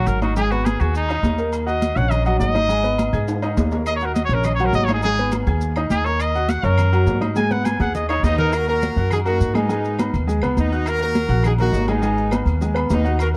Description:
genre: latin, salsa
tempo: 206 BPM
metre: 4/4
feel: straight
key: Eb minor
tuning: A4 = 441 Hz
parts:
  - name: bright trumpet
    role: melody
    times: 0.0-8.5 s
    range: Eb4 to Ab5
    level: -25 LUFS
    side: equal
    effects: none
  - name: clear concert grand piano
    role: accompaniment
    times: 0.0-13.4 s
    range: Gb3 to Ab6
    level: -26 LUFS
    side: equal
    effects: none
  - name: upright bass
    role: bass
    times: 0.0-13.4 s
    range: Ab1 to Ab2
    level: -24 LUFS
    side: equal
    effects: none
  - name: congas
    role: percussion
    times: 0.1-13.3 s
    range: none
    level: -28 LUFS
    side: equal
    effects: none
  - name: maracas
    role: percussion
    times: 0.1-13.4 s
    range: none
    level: -46 LUFS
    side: equal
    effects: none
  - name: agogo bells and timbales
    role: percussion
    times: 0.2-13.3 s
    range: none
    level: -33 LUFS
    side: equal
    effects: none
  - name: claves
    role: percussion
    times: 3.9-13.3 s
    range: none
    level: -39 LUFS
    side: equal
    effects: none
  - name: brilliant horn section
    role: melody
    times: 8.2-13.3 s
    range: Cb4 to Bb4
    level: -26 LUFS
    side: equal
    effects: none
room: light reverb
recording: dark, warm production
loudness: -20 LUFS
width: mono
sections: 0.0-8.5 A section; 8.5-13.4 B section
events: trumpet solo 0.0-8.5; drum fill 3.3-3.9, 7.4-8.5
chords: 0.4 Abm; 1.5 Ebm7; 2.7 Abm; 3.9 Ebm7; 5.0 Abm; 6.2 Ebm7; 7.4 Abm; 8.5 Ebm; 9.7 Abm; 10.9 Ebm; 12.0 Abm

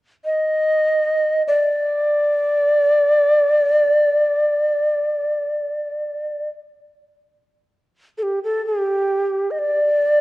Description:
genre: japanese traditional, Japanese chamber music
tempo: free time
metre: none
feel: none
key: unclear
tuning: A4 = 440 Hz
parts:
  - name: breathy shakuhachi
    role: solo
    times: 0.3-10.2 s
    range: G4 to Eb5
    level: -16 LUFS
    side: equal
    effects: none
room: moderate scoring stage reverb, RT60 1.8 s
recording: worn, warbling old tape, cassette tape, warbly pitch drift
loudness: -16 LUFS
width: side -18 dB against mid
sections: 0.0-7.7 A section; 7.7-10.2 B section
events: none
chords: none

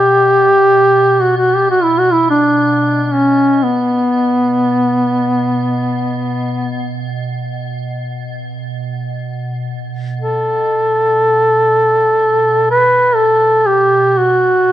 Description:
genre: caucasian folk, Caucasian lament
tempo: free time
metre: none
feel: none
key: B minor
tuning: A4 = 441 Hz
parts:
  - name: mellow duduk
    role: melody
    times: 0.0-14.7 s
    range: B3 to B4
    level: -11 LUFS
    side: equal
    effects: none
  - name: icy glass pad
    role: drone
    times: 0.0-14.7 s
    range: B2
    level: -22 LUFS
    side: right 2 dB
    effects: chorus, built-in reverb
room: light reverb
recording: close, detailed microphones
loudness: -11 LUFS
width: side -12 dB against mid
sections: 0.0-9.5 A section; 9.5-14.7 A section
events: none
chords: none

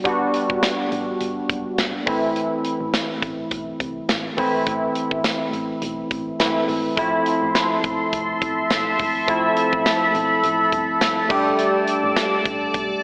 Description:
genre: 1980s-style pop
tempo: 104 BPM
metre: 4/4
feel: swing 55% on 16ths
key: unclear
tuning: A4 = 436 Hz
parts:
  - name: barky tine electric piano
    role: accompaniment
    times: 0.0-13.0 s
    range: E3 to G4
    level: -21 LUFS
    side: equal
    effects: analog chorus
  - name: solid FM bass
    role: bass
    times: 0.1-13.0 s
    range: F#1 to C2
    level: -36 LUFS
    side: equal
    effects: none
  - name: modern studio drum kit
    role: drums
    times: 0.1-12.9 s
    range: crash cymbal, hi-hat, kick drum, snare drum, tambourine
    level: -24 LUFS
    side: equal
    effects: gated reverb
  - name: sweeping resonant pad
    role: sustained chords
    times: 7.0-13.0 s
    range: A4 to D6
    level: -20 LUFS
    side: equal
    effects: chorus
room: moderate lush hall reverb, RT60 2.5 s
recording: AM radio sound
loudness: -18 LUFS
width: side -29 dB against mid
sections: 0.0-13.0 A section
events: none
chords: 0.0 Gmaj7; 2.1 Am; 7.0 Fmaj7; 11.3 G

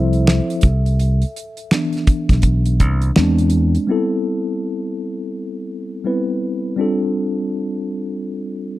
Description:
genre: R&B, neo-soul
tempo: 83 BPM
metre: 4/4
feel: swing 61% on 16ths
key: A minor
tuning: A4 = 440 Hz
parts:
  - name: mellow tine electric piano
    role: accompaniment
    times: 0.0-8.8 s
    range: E3 to E5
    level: -20 LUFS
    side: left 1 dB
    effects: medium stereo tremolo
  - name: fingered electric bass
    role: bass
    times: 0.0-3.8 s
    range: B1 to E2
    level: -16 LUFS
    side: equal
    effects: none
  - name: damped 70s drum kit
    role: drums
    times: 0.1-3.9 s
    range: finger snaps, hi-hat, kick drum, snare drum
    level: -16 LUFS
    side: equal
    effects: none
room: small room ambience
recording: dry, close 1970s-style studio recording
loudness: -16 LUFS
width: side -16 dB against mid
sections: 0.0-3.9 A section; 3.9-8.8 B section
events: tine electric piano solo 0.0-3.9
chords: 0.0 Dm9 (rootless); 0.6 Cmaj9; 3.2 E7b13; 3.9 Am9; 6.8 F69

